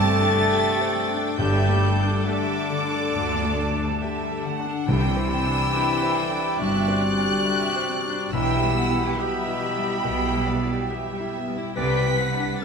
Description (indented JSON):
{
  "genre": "cinematic",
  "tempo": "70 BPM",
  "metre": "4/4",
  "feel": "rubato",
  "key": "C lydian",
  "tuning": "A4 = 440 Hz",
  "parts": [
    { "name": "rich symphonic violin section", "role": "melody", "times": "0.0-12.6 s", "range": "B5 to B6", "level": "-29 LUFS", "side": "left 3 dB", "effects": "none" },
    { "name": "bright oboe", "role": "second line", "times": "0.0-12.1 s", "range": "D5 to E5", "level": "-34 LUFS", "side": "right 2 dB", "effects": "none" },
    { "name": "clear clarinet", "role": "second line", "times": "0.0-12.6 s", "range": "B3 to B4", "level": "-31 LUFS", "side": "left 2 dB", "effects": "none" },
    { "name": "mellow hollow flute section", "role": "second line", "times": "0.0-12.2 s", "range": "G5 to A5", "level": "-31 LUFS", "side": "right 7 dB", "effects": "none" },
    { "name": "rich studio violin section", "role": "second line", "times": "0.0-12.6 s", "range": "D5 to A5", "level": "-33 LUFS", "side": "equal", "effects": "none" },
    { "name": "bright concert grand piano", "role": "accompaniment", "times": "0.0-12.6 s", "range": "B1 to C5", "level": "-31 LUFS", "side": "left 4 dB", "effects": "none" },
    { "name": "rich symphonic viola section", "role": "accompaniment", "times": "0.0-12.6 s", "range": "D3 to A4", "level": "-33 LUFS", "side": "right 1 dB", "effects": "none" },
    { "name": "mellow French horn section", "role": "sustained chords", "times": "0.0-12.6 s", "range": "B2 to B4", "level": "-29 LUFS", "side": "left 4 dB", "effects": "none" },
    { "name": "concert harp", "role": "arpeggios", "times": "0.0-12.6 s", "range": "G2 to B4", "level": "-32 LUFS", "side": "left 11 dB", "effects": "none" },
    { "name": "rich symphonic cello section", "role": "bass", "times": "0.0-12.5 s", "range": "D2 to C3", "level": "-30 LUFS", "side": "right 3 dB", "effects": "none" },
    { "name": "rich symphonic double bass section", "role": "bass", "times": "0.0-12.5 s", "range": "G1 to D2", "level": "-28 LUFS", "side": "right 3 dB", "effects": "none" },
    { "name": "timpani", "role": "percussion", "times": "1.4-6.1 s", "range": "G2 to C3", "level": "-29 LUFS", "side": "right 1 dB", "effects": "none" }
  ],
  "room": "moderate recital hall reverb, RT60 1.6 s",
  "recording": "close, detailed microphones",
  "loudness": "-21 LUFS",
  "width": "side -5 dB against mid",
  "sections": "0.0-12.6 A section",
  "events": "none",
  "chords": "0.0 Csus2; 1.4 Gsus2; 4.9 Csus2; 8.3 Em/B; 11.8 Csus2"
}